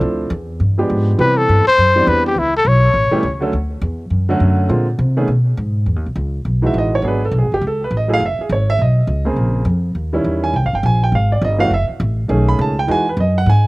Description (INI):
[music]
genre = jazz, small-group swing and bop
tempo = 205 BPM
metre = 4/4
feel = swing 62% on 8ths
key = E major from 5.9 s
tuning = A4 = 440 Hz
[part]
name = warm baby grand piano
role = accompaniment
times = 0.0-13.7 s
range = C#3 to B5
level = -18 LUFS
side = right 2 dB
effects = none
[part]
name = upright bass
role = bass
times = 0.0-13.7 s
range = F#1 to C3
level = -16 LUFS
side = equal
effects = none
[part]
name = breathy trumpet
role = melody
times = 1.2-3.4 s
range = E4 to C#5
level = -13 LUFS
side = left 2 dB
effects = slapback echo
[sound]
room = little or no reverb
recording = recorded outdoors, with no room sound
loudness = -14 LUFS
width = side -21 dB against mid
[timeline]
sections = 0.0-5.9 A section; 5.9-13.7 B section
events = none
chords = 0.0 Dm9; 0.6 G7b9; 1.2 Cmaj7; 2.4 A7; 3.5 Dmaj7; 4.7 Bb9; 5.3 G#m; 5.9 Emaj9; 7.0 G#m7b5; 7.6 C#m; 8.2 F#sus2; 9.4 A#m9; 10.0 D#7b9; 10.5 G#maj7(no3); 11.7 F#m; 12.3 B13; 12.9 Emaj9